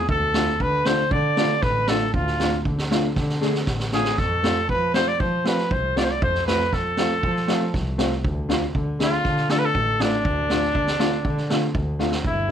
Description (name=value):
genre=klezmer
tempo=118 BPM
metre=4/4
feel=straight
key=D dorian sharp4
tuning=A4 = 440 Hz
part: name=clear cornet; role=melody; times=0.0-12.5 s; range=D4 to D5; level=-23 LUFS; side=equal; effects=none
part: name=warm double bass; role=bass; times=0.1-12.5 s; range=G1 to F3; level=-26 LUFS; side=equal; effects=none
part: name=street-band drum kit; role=drums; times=0.1-12.4 s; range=kick drum, snare drum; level=-26 LUFS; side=right 2 dB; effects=none
part: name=dark upright piano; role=accompaniment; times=0.3-12.5 s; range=A3 to G#4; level=-25 LUFS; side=left 2 dB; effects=none
room=light reverb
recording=none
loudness=-20 LUFS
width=side -9 dB against mid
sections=0.0-12.2 A section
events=speeding up 0.0-12.5; drum fill 3.2-4.2, 12.0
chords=0.1 Dm; 4.2 F; 8.2 Dm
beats=| 0.09 0.60 1.12 1.63 | 2.14 2.65 3.17 3.68 | 4.19 4.70 5.20 5.71 | 6.22 6.72 7.23 7.74 | 8.24 8.74 9.25 9.75 | 10.25 10.75 11.25 11.75 | 12.24